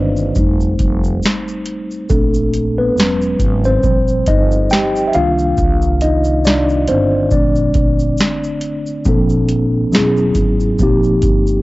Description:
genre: lo-fi hip hop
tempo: 69 BPM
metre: 4/4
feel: swing 57% on 16ths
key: Bb major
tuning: A4 = 440 Hz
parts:
  - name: mellow tine electric piano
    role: accompaniment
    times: 0.0-11.6 s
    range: D3 to G5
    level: -15 LUFS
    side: equal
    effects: medium stereo tremolo, cassette tape
  - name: upright bass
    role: bass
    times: 0.0-11.6 s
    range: E1 to C2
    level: -18 LUFS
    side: equal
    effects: none
  - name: booming analog drum machine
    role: drums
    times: 0.2-11.6 s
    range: hi-hat, kick drum, shaker, snare drum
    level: -17 LUFS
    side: equal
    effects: cassette tape
room: digital ambience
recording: home recording on cassette, nothing above 7.8 kHz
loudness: -12 LUFS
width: side -19 dB against mid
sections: 0.0-9.1 A section; 9.1-11.6 A section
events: tine electric piano solo 0.0-9.1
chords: 0.4 F7; 2.1 Bbmaj9; 3.0 E6; 3.8 Eb6; 5.1 Cm7; 7.3 Bbmaj7; 9.1 Bbmaj9; 9.9 E6; 10.8 Eb6

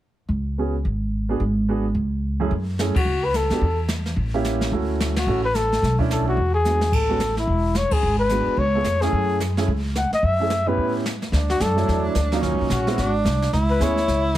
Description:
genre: jazz, small-group swing and bop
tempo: 218 BPM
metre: 4/4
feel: swing 60% on 8ths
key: F# minor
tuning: A4 = 440 Hz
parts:
  - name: upright bass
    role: bass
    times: 0.3-14.4 s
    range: E1 to F#2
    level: -23 LUFS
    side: equal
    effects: none
  - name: warm baby grand piano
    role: accompaniment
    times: 0.6-14.0 s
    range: F#2 to C#5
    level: -26 LUFS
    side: right 4 dB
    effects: none
  - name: jazz brush drum kit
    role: drums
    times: 2.5-14.4 s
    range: brushed snare drum, crash cymbal, hi-hat, kick drum, ride cymbal, snare drum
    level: -27 LUFS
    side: equal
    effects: none
  - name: breathy trumpet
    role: melody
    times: 3.0-14.3 s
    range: D#4 to F#5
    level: -23 LUFS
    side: left 2 dB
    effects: plate reverb
  - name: breathy tenor saxophone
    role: second line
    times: 11.3-14.4 s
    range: C#4 to E4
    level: -25 LUFS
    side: right 2 dB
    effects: none
room: light reverb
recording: heavily compressed radio sound, multiband compression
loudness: -19 LUFS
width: side -13 dB against mid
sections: 0.3-2.5 A section; 2.5-11.3 B section; 11.3-14.4 C section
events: band accent 2.9, 5.1, 7.9; drum fill 6.6; break 10.8-11.3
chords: 0.3 C#7sus4; 1.4 G#m7b5; 2.0 C#5; 2.5 F#m9; 3.6 N.C.; 4.2 A7b9; 4.7 Dmaj9; 5.8 Bm11; 6.4 E7; 6.9 A5; 8.0 G#m7b5; 8.6 C#7b13; 9.1 F#m9; 10.8 A9; 11.3 Dmaj9; 12.4 D#m9; 13.0 G#; 13.5 C#m7

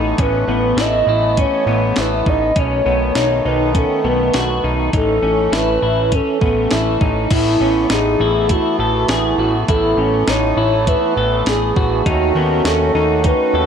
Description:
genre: dream pop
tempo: 101 BPM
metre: 4/4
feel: straight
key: A lydian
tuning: A4 = 440 Hz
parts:
  - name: hand-pumped harmonium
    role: sustained chords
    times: 0.0-13.7 s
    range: D#3 to F#4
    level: -22 LUFS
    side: right 1 dB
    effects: none
  - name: clean electric guitar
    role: arpeggios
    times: 0.0-13.7 s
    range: B3 to A4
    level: -20 LUFS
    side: left 2 dB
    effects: analog chorus, tape echo
  - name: fat analog bass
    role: bass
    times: 0.0-13.7 s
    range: A1 to D#2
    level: -21 LUFS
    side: equal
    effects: none
  - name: warbly nostalgic lead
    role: melody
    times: 0.2-13.7 s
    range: E4 to D#5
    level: -18 LUFS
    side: right 1 dB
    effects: chorus, tape echo
  - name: crisp 8-bit digital drum machine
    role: drums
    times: 0.2-13.4 s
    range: crash cymbal, hi-hat, kick drum, snare drum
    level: -19 LUFS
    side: equal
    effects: none
room: moderate lush hall reverb, RT60 1.7 s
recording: none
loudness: -14 LUFS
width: side -7 dB against mid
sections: 0.0-7.3 A section; 7.3-13.7 A section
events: none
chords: 0.0 Asus2; 2.6 B7; 4.9 A; 7.3 Asus2; 12.1 D#m7b5

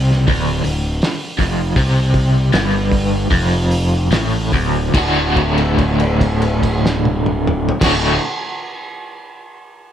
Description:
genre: psychedelic rock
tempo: 71-83 BPM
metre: 4/4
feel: straight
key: D mixolydian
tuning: A4 = 441 Hz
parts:
  - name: crunchy overdriven guitar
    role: riff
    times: 0.0-8.2 s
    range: D2 to F#4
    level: -16 LUFS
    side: equal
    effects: tremolo
  - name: fuzz fingered electric bass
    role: bass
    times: 0.0-8.2 s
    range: D1 to C2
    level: -20 LUFS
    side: equal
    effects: overdrive
  - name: cloth-damped thuddy drum kit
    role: drums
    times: 0.1-8.0 s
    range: crash cymbal, hi-hat, kick drum, snare drum, toms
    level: -20 LUFS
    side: equal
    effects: none
room: light reverb, small room ambience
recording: none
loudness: -14 LUFS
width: side -10 dB against mid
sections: 0.0-4.9 A section; 4.9-8.3 B section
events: slowing down 0.0-4.9; held note 4.9-7.8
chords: 0.0 D5; 4.9 D

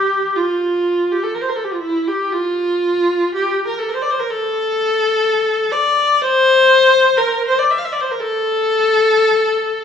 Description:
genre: classical, free, expressive piece for unaccompanied viola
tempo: 51-64 BPM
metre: 4/4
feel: rubato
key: unclear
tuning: A4 = 440 Hz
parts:
  - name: warm viola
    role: solo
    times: 0.0-9.8 s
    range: E4 to F5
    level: -14 LUFS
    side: left 2 dB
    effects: none
room: wet recital hall reverb, RT60 1.4 s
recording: recorded in a church or concert hall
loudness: -14 LUFS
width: side -7 dB against mid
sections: 0.0-9.8 A section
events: none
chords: none

